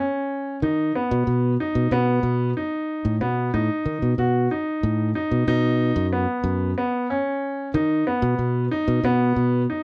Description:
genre	progressive instrumental, progressive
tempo	185 BPM (eighths)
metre	11/8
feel	straight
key	B mixolydian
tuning	A4 = 438 Hz
part	bright grand piano	arpeggios	0.0-9.8 s	B3 to F#4	-26 LUFS	equal	none
part	modern bright fingered electric bass	bass	0.6-9.7 s	F#2 to D#3	-24 LUFS	equal	none
room	moderate studio reverb, RT60 0.5 s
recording	dark, warm production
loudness	-23 LUFS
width	mono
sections	0.0-9.8 A section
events	none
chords	0.0 B

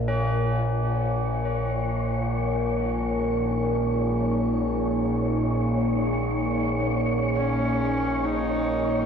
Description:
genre	ambient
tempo	free time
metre	none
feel	none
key	Bb minor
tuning	A4 = 440 Hz
part	overtone-sweeping drone	drone	0.0-9.1 s	Bb1 to Bb2	-25 LUFS	equal	chorus, built-in reverb
part	deep dark ambient pad	sustained chords	2.0-9.1 s	Bb3 to Db5	-29 LUFS	left 1 dB	chorus, built-in reverb, shimmer reverb
part	tubular bells	arpeggios	0.1-9.1 s	Db4	-34 LUFS	left 2 dB	shimmer reverb, ping-pong delay
part	wind-like tuned noise texture	texture	0.9-9.1 s	Db5	-32 LUFS	equal	built-in reverb, shimmer reverb
part	rich horsehead fiddle	melody	7.4-9.1 s	Db4 to Eb4	-27 LUFS	right 1 dB	shimmer reverb
room	wet cathedral reverb, RT60 4.7 s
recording	worn, warbling old tape, cassette tape, warbly pitch drift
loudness	-22 LUFS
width	side -7 dB against mid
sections	0.0-9.1 A section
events	filter sweep on synth drone 0.0-9.1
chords	0.0 Bbm

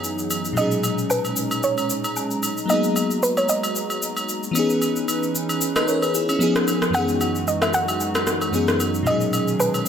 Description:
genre	amapiano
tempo	113 BPM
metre	4/4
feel	swing 55% on 16ths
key	unclear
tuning	A4 = 439 Hz
part	soft round pluck	melody	0.0-9.9 s	B4 to G#5	-25 LUFS	right 1 dB	chorus, tape echo
part	crystalline FM electric piano	accompaniment	0.0-9.9 s	F#2 to D#5	-23 LUFS	left 1 dB	chorus
part	hollow soft pad	sustained chords	0.0-9.9 s	D#3 to A#5	-27 LUFS	right 2 dB	chorus
part	electronic shaker and rim click	drums	0.0-9.9 s	none	-27 LUFS	left 1 dB	overdrive
part	agogo bells and woodblock	percussion	0.3-9.9 s	none	-29 LUFS	right 1 dB	none
part	riser	sound effects	9.1-9.9 s	none	barely audible	none	none
room	light reverb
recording	none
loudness	-19 LUFS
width	side -8 dB against mid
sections	0.0-9.9 A section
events	none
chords	0.0 F#13sus4; 0.6 Bmaj13; 2.7 G#m9; 4.6 C#m9; 6.4 C#7; 6.9 F#13sus4; 9.1 Bmaj13

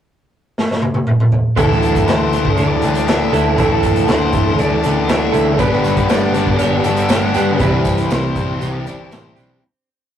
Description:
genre	rock, shoegaze and dream pop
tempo	119 BPM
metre	4/4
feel	straight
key	unclear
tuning	A4 = 441 Hz
part	raw garage drum kit	drums	0.6-9.5 s	hi-hat, kick drum, snare drum, toms	-18 LUFS	equal	none
part	octave-fuzz lead guitar	melody	1.6-9.3 s	A4 to F#5	-26 LUFS	left 2 dB	distortion
part	twelve-string electric guitar	arpeggios	1.6-9.6 s	E3 to G4	-26 LUFS	right 3 dB	none
part	biting overdriven guitar	riff	1.6-9.6 s	G2 to E4	-17 LUFS	left 3 dB	none
part	direct-recorded clean electric guitar	riff	1.6-9.6 s	G2 to A4	-20 LUFS	right 4 dB	none
part	vintage muted picked electric bass	bass	1.6-9.6 s	G1 to G2	-23 LUFS	equal	none
part	biting overdriven guitar	riff	5.6-9.6 s	G2 to E4	-24 LUFS	right 1 dB	none
part	tambourine	percussion	5.8-9.5 s	none	-36 LUFS	right 6 dB	none
room	wet booth ambience, RT60 0.2 s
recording	rough rehearsal-room recording, tube saturation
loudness	-13 LUFS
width	side -9 dB against mid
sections	0.0-1.6 pickup bar; 1.6-9.6 verse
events	drum fill 0.6-1.6; fade-out 7.6-9.6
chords	0.0 N.C.; 1.6 Dsus2; 5.6 G; 7.6 Cadd9

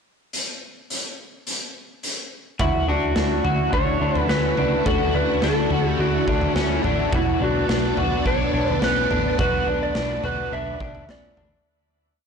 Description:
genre	dream pop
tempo	106 BPM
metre	4/4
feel	straight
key	D major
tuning	A4 = 440 Hz
part	raw garage drum kit	drums	0.3-11.5 s	hi-hat, kick drum, snare drum, toms	-26 LUFS	equal	none
part	electric slide guitar	melody	2.6-11.5 s	E4 to E5	-24 LUFS	right 1 dB	tape echo
part	string machine, violins	sustained chords	2.6-11.6 s	D3 to F#4	-27 LUFS	equal	ensemble chorus
part	electric guitar at the edge of break-up	arpeggios	2.6-11.7 s	C#4 to F#4	-26 LUFS	left 4 dB	analog chorus, tape echo
part	plucky analog bass	bass	2.6-11.6 s	A1 to D2	-27 LUFS	equal	transformer saturation
room	light reverb, small room ambience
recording	blown-out, overdriven recording, overdrive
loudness	-19 LUFS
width	side -6 dB against mid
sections	0.3-2.6 pickup bar; 2.6-11.7 verse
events	fade-out 9.4-11.7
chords	0.3 N.C.; 2.6 Dmaj7; 7.1 Bm7

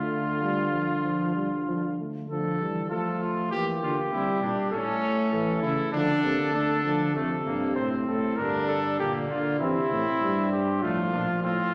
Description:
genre	classical, imitative canzona for brass ensemble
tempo	98 BPM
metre	4/4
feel	straight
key	D minor, F major from 7.2 s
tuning	A4 = 442 Hz
part	warm cornet	melody	0.0-11.7 s	E4 to C5	-32 LUFS	equal	none
part	warm trumpet	second line	0.0-11.7 s	A3 to A4	-34 LUFS	equal	none
part	mellow euphonium	accompaniment	0.0-11.7 s	C3 to Bb3	-34 LUFS	equal	none
part	mellow bass trombone	bass	0.0-11.7 s	F2 to F3	-32 LUFS	equal	none
room	wet recital hall reverb, RT60 1.7 s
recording	none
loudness	-27 LUFS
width	mono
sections	0.0-2.3 A section; 2.3-7.2 B section; 7.2-11.7 C section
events	none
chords	0.0 Dm; 3.5 Edim; 4.7 A; 5.9 Dm; 7.2 F; 8.4 Gm; 9.6 C; 10.8 F/A

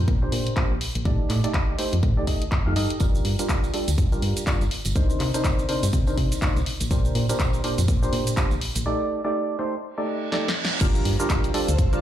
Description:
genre	piano house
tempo	123 BPM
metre	4/4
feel	swing 59% on 16ths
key	G minor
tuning	A4 = 441 Hz
part	solid FM bass	bass	0.0-11.9 s	G1 to C3	-24 LUFS	equal	sidechain pumping
part	electronic kick drum	drums	0.1-11.9 s	none	-23 LUFS	equal	none
part	house drum kit	drums	0.1-12.0 s	crash cymbal, handclaps, hi-hat, shaker, snare drum	-30 LUFS	left 1 dB	none
part	percussive organ stab	riff	0.2-12.0 s	Bb2 to F5	-27 LUFS	right 1 dB	lush chorus, sidechain pumping, tape echo
part	tambourine	percussion	3.0-8.8 s	none	-38 LUFS	right 6 dB	none
part	reverse cymbal and impact	sound effects	10.1-12.0 s	none	-30 LUFS	right 1 dB	none
part	granular cloud pad	texture	11.2-12.0 s	C5 to A5	-33 LUFS	right 1 dB	built-in reverb, sidechain pumping
room	little or no reverb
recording	played on a big sound system in a bare room, large studio reverb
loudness	-21 LUFS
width	side -11 dB against mid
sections	0.0-10.8 A section; 10.8-12.0 B section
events	break 8.9-10.8; reverse cymbal 10.1-10.8; drum fill 10.3-10.8; band accent 10.6; drop 10.8-12.0; impact 10.8-12.0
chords	0.0 Bb69; 1.1 F13/A; 3.0 Gm7; 5.0 Cm9; 6.7 Bb69; 8.9 Cm69/A; 10.8 Gm7

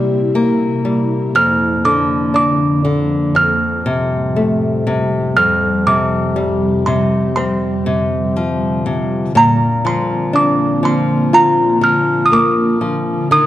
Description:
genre	children's music, lullaby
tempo	60 BPM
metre	4/4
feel	straight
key	Bb major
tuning	A4 = 436 Hz
part	music box	melody	0.0-13.5 s	Bb5 to F6	-15 LUFS	right 2 dB	none
part	nylon-string guitar	accompaniment	0.0-13.5 s	F2 to G4	-16 LUFS	left 2 dB	none
part	ethereal airy pad	sustained chords	0.0-13.5 s	F2 to E4	-20 LUFS	right 1 dB	ensemble chorus, built-in reverb, tremolo
room	moderate concert hall reverb, RT60 1.9 s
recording	worn, warbling old tape, cassette tape, warbly pitch drift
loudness	-13 LUFS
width	side -13 dB against mid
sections	0.0-13.5 A section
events	none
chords	0.0 C7; 1.4 Bb/F; 3.4 Fadd9; 5.4 Fsus2; 9.3 Bbadd9

